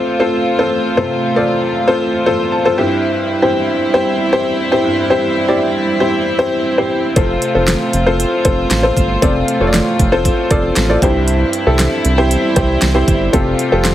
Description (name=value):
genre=piano-driven pop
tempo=116 BPM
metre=4/4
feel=straight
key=F major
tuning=A4 = 440 Hz
part: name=clear upright piano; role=accompaniment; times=0.0-13.9 s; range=G2 to A5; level=-14 LUFS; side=left 1 dB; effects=none
part: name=warm studio string section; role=sustained chords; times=0.0-13.9 s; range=G3 to F4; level=-20 LUFS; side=right 2 dB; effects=none
part: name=round analog bass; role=bass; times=7.2-13.9 s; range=F1 to C2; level=-17 LUFS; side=right 1 dB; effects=none
part: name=pop drum kit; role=drums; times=7.2-13.9 s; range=hi-hat, kick drum, snare drum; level=-17 LUFS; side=right 1 dB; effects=none
room=light reverb, small room ambience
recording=heavily compressed radio sound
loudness=-12 LUFS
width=side -12 dB against mid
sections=0.0-13.9 A section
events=upright piano fill 2.3-3.0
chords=0.0 F; 2.8 C; 7.2 F; 11.0 C; 13.3 Fadd9